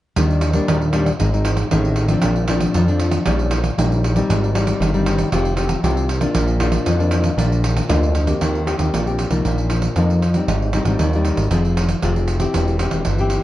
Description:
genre	samba and choro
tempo	116 BPM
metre	4/4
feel	straight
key	unclear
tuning	A4 = 440 Hz
part	nylon-string guitar	accompaniment	0.2-13.4 s	F2 to Ab4	-21 LUFS	left 2 dB	none
part	fat analog bass	bass	0.2-13.4 s	E1 to F2	-19 LUFS	equal	none
part	pandeiro	percussion	0.2-13.4 s	none	-22 LUFS	right 2 dB	none
room	light reverb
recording	dark, warm production, nothing above 10.9 kHz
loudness	-16 LUFS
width	side -14 dB against mid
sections	0.2-8.4 A section; 8.4-13.4 B section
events	none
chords	0.2 Ebmaj7; 1.2 Ab; 2.2 Bbadd9; 3.3 Eb7/Bb; 4.3 Abmaj7; 5.3 Fsus2; 6.3 Bb; 8.4 Bbsus4; 10.5 Abmaj7; 11.5 Fm; 12.5 C/E

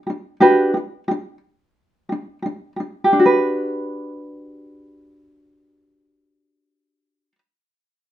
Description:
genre	pop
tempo	89 BPM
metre	4/4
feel	swing 55% on 16ths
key	G major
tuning	A4 = 440 Hz
part	tenor ukulele	solo	0.0-7.4 s	D4 to B4	-16 LUFS	equal	none
room	moderate studio reverb, RT60 0.6 s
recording	heard from further back in the room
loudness	-17 LUFS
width	side -12 dB against mid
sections	0.0-3.1 A section; 3.1-5.8 B section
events	none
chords	0.0 G5; 3.1 Gmaj7

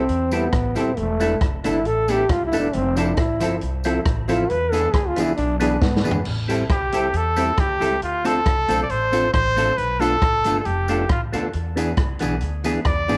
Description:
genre	ska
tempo	136 BPM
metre	4/4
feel	straight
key	A minor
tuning	A4 = 440 Hz
part	clear trombone	melody	0.0-6.3 s	A3 to B4	-25 LUFS	equal	none
part	archtop guitar, miked and amplified	accompaniment	0.0-13.2 s	E3 to A4	-28 LUFS	equal	none
part	percussive tonewheel organ	stabs	0.0-13.2 s	B3 to A4	-32 LUFS	equal	chorus vibrato, slow rotary speaker
part	upright bass	bass	0.0-13.2 s	D#1 to G#2	-28 LUFS	equal	none
part	swinging big-band drum kit	drums	0.1-13.2 s	crash cymbal, hi-hat, kick drum, rim click, snare drum, toms	-26 LUFS	equal	vintage 12-bit sampler grit
part	tambourine	percussion	0.3-13.2 s	none	-43 LUFS	equal	none
part	clear trumpet	melody	6.7-13.2 s	F4 to D5	-23 LUFS	equal	none
room	moderate spring reverb, RT60 1.5 s, small room ambience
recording	none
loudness	-21 LUFS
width	mono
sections	0.0-6.3 A section; 6.3-13.2 A section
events	trombone solo 0.0-6.3; drum fill 5.8-6.3; trumpet solo 6.3-13.2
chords	0.0 Am7; 1.0 E7sus4; 2.7 Fmaj7; 4.5 E7; 6.3 Am7; 8.0 Dm7; 9.8 Bm7b5; 11.5 E7

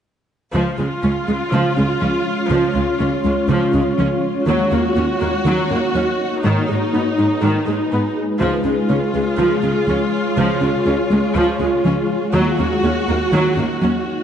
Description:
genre	cinematic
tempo	122 BPM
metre	4/4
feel	straight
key	unclear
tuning	A4 = 442 Hz
part	warm symphonic viola section	accompaniment	0.5-14.2 s	Eb3 to Gb4	-20 LUFS	right 1 dB	none
part	swarming drone	sustained chords	1.5-14.2 s	Ab3 to Db5	-20 LUFS	left 1 dB	built-in reverb
part	soft round pluck	arpeggios	0.5-14.0 s	Db3 to Ab4	-24 LUFS	equal	chorus, digital delay
part	rich symphonic cello section	bass	0.5-13.9 s	Db2 to Ab2	-22 LUFS	right 1 dB	none
room	moderate scoring stage reverb, RT60 1.9 s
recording	nothing above 10.5 kHz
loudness	-15 LUFS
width	side -9 dB against mid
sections	0.5-14.2 A section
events	none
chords	0.5 Db; 4.5 Ebm7; 6.4 Abm; 8.4 Db; 12.3 Ebm7

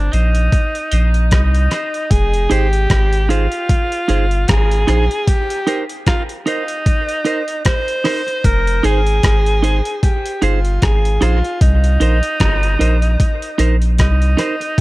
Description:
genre	dub reggae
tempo	76 BPM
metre	4/4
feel	swing 56% on 16ths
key	unclear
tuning	A4 = 440 Hz
part	breathy tenor saxophone	melody	0.0-14.8 s	D4 to C5	-20 LUFS	equal	dub echo
part	soft dub sub bass	bass	0.0-14.8 s	F1 to C2	-14 LUFS	equal	none
part	clean electric guitar	accompaniment	0.1-14.6 s	Eb4 to C5	-22 LUFS	right 4 dB	high-pass filter, dub echo
part	dusty soul sampler-style drum kit	drums	0.1-14.8 s	hi-hat, kick drum, rim click	-17 LUFS	equal	overdrive
room	digital ambience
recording	none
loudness	-13 LUFS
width	side -20 dB against mid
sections	0.0-14.8 A section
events	break 5.3-8.4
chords	0.0 Cm7; 2.1 Fm7; 5.3 Cm7; 8.4 Fm7; 11.6 Cm7

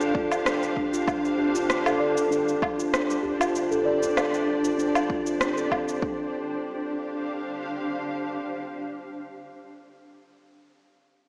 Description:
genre	organic downtempo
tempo	97 BPM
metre	4/4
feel	straight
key	D minor pentatonic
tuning	A4 = 440 Hz
part	granular cloud pad	sustained chords	0.0-9.3 s	D4 to F5	-29 LUFS	equal	built-in reverb, sidechain pumping
part	steel tongue drum	arpeggios	0.0-6.3 s	C4 to D5	-26 LUFS	equal	low-pass filter, tape echo
part	electronic shaker, woodblock and rim click	drums	0.0-6.0 s	none	-28 LUFS	equal	overdrive
part	electronic kick drum	drums	0.1-6.2 s	none	-34 LUFS	equal	overdrive
part	udu	percussion	1.5-4.1 s	none	-54 LUFS	equal	none
room	wet lush hall reverb, RT60 1.7 s, small room ambience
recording	dreamy mix soaked in reverb, small speaker sound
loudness	-23 LUFS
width	side -35 dB against mid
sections	0.0-6.0 A section; 6.0-8.5 B section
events	filter sweep on steel tongue drum 0.0-6.0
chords	0.0 Dm7

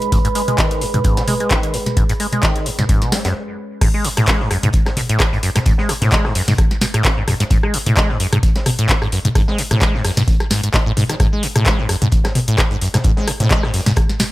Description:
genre	acid house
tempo	130 BPM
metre	4/4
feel	swing 55% on 16ths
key	G# phrygian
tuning	A4 = 440 Hz
part	booming analog drum machine	drums	0.0-14.3 s	crash cymbal, handclaps, hi-hat, rim click, snare drum, toms	-19 LUFS	left 1 dB	none
part	deep dark ambient pad	texture	0.0-3.4 s	G#4 to B5	-25 LUFS	right 2 dB	chorus, built-in reverb, sidechain pumping
part	acid bass, saw	riff	0.1-14.2 s	F#2 to G#3	-19 LUFS	equal	wide subtle chorus, sidechain pumping, digital delay
part	crunchy breakbeat drum kit	drums	0.1-14.3 s	hi-hat, snare drum	-30 LUFS	equal	sidechain pumping on hats, high-pass filter on hats, high-pass filter on snare, high-pass filter on room
part	electronic kick drum	drums	0.1-14.1 s	none	-17 LUFS	equal	none
room	light reverb, digital ambience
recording	none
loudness	-14 LUFS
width	side -17 dB against mid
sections	0.0-3.8 A section; 3.8-14.3 B section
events	stop 3.4-3.8; drop 3.8-14.3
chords	0.0 G#m; 3.8 N.C.

